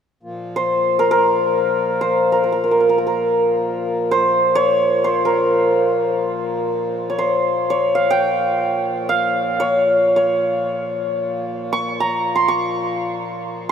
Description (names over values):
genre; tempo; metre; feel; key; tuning
indian classical; free time; none; none; Bb raga shivaranjani; A4 = 441 Hz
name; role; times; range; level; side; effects
pedal harmonium; drone; 0.2-13.7 s; Bb2 to F3; -26 LUFS; left 2 dB; none
santur; melody; 0.6-13.7 s; Bb4 to Db6; -16 LUFS; equal; tape echo
room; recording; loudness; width
wet huge ambient reverb, RT60 4.8 s; dreamy mix soaked in reverb; -16 LUFS; side -8 dB against mid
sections
0.2-13.7 A section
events
none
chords
none